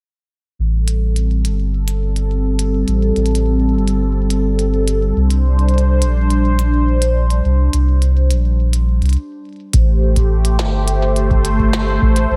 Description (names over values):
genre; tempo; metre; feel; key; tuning
IDM; 105 BPM; 4/4; straight; A phrygian; A4 = 440 Hz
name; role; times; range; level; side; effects
phased analog pad; sustained chords; 0.6-12.4 s; G3 to C5; -22 LUFS; equal; phaser, chorus
warm sub bass; bass; 0.6-12.4 s; G1 to C2; -17 LUFS; equal; none
glitchy drum kit; drums; 0.9-12.3 s; hi-hat, snare drum; -28 LUFS; equal; overdrive, delay
electronic kick drum; drums; 9.7-12.1 s; none; -18 LUFS; equal; none
room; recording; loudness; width
light reverb; none; -16 LUFS; mono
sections
0.6-9.7 A section; 9.7-12.4 B section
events
filter sweep on sub bass 0.6-9.7; filter sweep on analog synth pad 0.6-9.7; stop 9.2-9.7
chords
0.6 Am7; 5.2 Csus2; 9.7 Am7